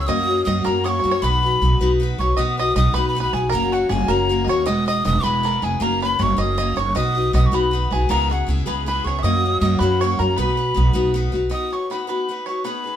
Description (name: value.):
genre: celtic folk, Celtic jig.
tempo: 105 BPM (dotted quarters).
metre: 6/8.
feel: straight.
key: B major.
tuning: A4 = 440 Hz.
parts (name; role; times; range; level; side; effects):
mellow hollow wooden whistle; melody; 0.0-13.0 s; F#5 to E6; -23 LUFS; left 1 dB; none.
bluegrass banjo; second line; 0.0-13.0 s; F#4 to E5; -27 LUFS; right 4 dB; none.
picked steel-string acoustic guitar; accompaniment; 0.0-13.0 s; C#3 to B4; -23 LUFS; left 3 dB; none.
upright bass; bass; 0.0-11.5 s; E1 to F#2; -21 LUFS; right 1 dB; none.
room: moderate studio reverb, RT60 0.9 s.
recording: band playing live in one room.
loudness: -17 LUFS.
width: side -10 dB against mid.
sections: 0.0-2.4 A section; 2.4-11.5 A section; 11.5-13.0 B section.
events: none.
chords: 0.1 F#; 1.2 B; 3.5 F#; 4.7 E; 5.8 F#6; 7.0 B; 8.1 C#m7; 9.2 F#; 10.4 B.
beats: | 0.08 0.65 | 1.23 1.80 | 2.37 2.95 | 3.52 4.09 | 4.66 5.24 | 5.81 6.38 | 6.95 7.52 | 8.09 8.66 | 9.23 9.80 | 10.37 10.95 | 11.52 12.09 | 12.66.